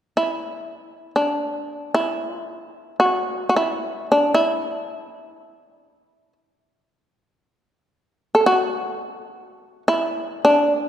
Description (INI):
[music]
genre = japanese traditional, Japanese chamber music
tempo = free time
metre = none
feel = none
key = unclear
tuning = A4 = 439 Hz
[part]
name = shamisen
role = solo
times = 0.2-10.9 s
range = D4 to A4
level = -19 LUFS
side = equal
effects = none
[sound]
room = wet concert hall reverb, RT60 2.3 s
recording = recorded in a church or concert hall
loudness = -19 LUFS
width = side -10 dB against mid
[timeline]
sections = 0.0-10.9 A section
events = none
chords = none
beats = free time